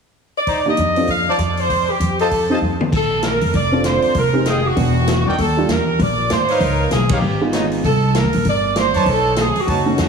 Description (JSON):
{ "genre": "jazz, big band swing", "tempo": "195 BPM", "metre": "4/4", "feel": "swing 61% on 8ths", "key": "unclear", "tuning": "A4 = 440 Hz", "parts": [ { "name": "clear saxophone section", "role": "melody", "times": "0.4-10.1 s", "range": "F#4 to F5", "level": "-19 LUFS", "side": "right 1 dB", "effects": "none" }, { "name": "clear trumpet section", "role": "stabs", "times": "0.5-9.8 s", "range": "Eb4 to Bb5", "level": "-25 LUFS", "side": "right 1 dB", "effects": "none" }, { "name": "swinging big-band drum kit", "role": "drums", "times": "0.5-10.1 s", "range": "crash cymbal, hi-hat, kick drum, ride cymbal, rim click, snare drum, toms", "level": "-24 LUFS", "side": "equal", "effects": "none" }, { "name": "warm grand piano", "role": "accompaniment", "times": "0.7-7.8, 9.9-10.1 s", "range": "G3 to A4", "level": "-21 LUFS", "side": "right 1 dB", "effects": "none" }, { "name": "upright bass", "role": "bass", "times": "0.8-10.1 s", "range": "E1 to Ab2", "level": "-20 LUFS", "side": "equal", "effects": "none" } ], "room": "moderate scoring stage reverb, RT60 2.1 s", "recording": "heavily compressed radio sound, multiband compression, studio reverb", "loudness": "-15 LUFS", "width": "side -5 dB against mid", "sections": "0.5-2.9 A section; 2.9-10.1 B section", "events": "drum fill 2.6-2.9; band accent 7.1", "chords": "0.5 Cm9; 1.1 Dm7; 1.7 G9sus4; 2.3 F7; 2.9 Bbmaj9; 4.2 Fm9; 4.8 E9; 5.4 Ebmaj7(no3); 6.6 Db9; 7.8 C7sus2; 9.1 B9" }